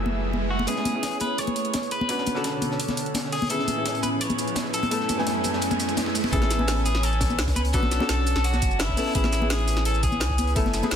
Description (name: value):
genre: liquid drum and bass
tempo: 170 BPM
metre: 4/4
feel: straight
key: A major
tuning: A4 = 440 Hz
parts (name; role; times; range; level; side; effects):
- felt-muted upright piano; accompaniment; 0.0-11.0 s; A3 to G#5; -30 LUFS; left 1 dB; tape echo
- airy breathy pad; sustained chords; 0.0-11.0 s; F#2 to A5; -32 LUFS; right 1 dB; chorus, sidechain pumping
- warm sub bass; bass; 0.0-0.7, 6.3-11.0 s; F#1 to C#2; -25 LUFS; equal; tube saturation
- riser; sound effects; 0.0-6.3 s; none; -34 LUFS; right 3 dB; none
- congas; percussion; 0.1-10.9 s; none; -31 LUFS; left 2 dB; none
- electric guitar at the edge of break-up; melody; 0.5-10.5 s; E4 to C#5; -29 LUFS; left 1 dB; digital delay
- crunchy breakbeat drum kit; drums; 0.7-11.0 s; hi-hat, snare drum; -34 LUFS; equal; high-pass filter on hats, studio reverb, high-pass filter on snare, high-pass filter on room
- drum and bass drum kit; drums; 0.7-11.0 s; hi-hat, shaker, snare drum; -30 LUFS; right 1 dB; overdrive, studio reverb
- electronic kick drum; drums; 0.7-10.6 s; none; -28 LUFS; equal; overdrive, high-pass filter on kick, studio reverb
room: light reverb, small room ambience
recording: dense, heavily limited modern master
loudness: -22 LUFS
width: side -8 dB against mid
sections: 0.7-6.3 A section; 6.3-11.0 B section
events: riser 0.0-0.7, 0.7-6.3; build-up 0.7-6.3; filter sweep on analog synth pad 0.7-6.3; drum fill 3.5-6.3; drop 6.3-11.0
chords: 0.0 F#m11; 0.7 Amaj7; 2.1 Bm7; 3.3 Amaj7; 4.9 F#m11; 6.3 Amaj7; 7.7 Bm7; 9.0 Amaj7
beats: 0.33 | 0.68 1.03 1.39 1.74 | 2.09 2.44 2.80 3.15 | 3.50 3.86 4.21 4.56 | 4.92 5.27 5.62 5.97 | 6.33 6.68 7.03 7.39 | 7.74 8.09 8.45 8.80 | 9.15 9.50 9.86 10.21 | 10.56 10.91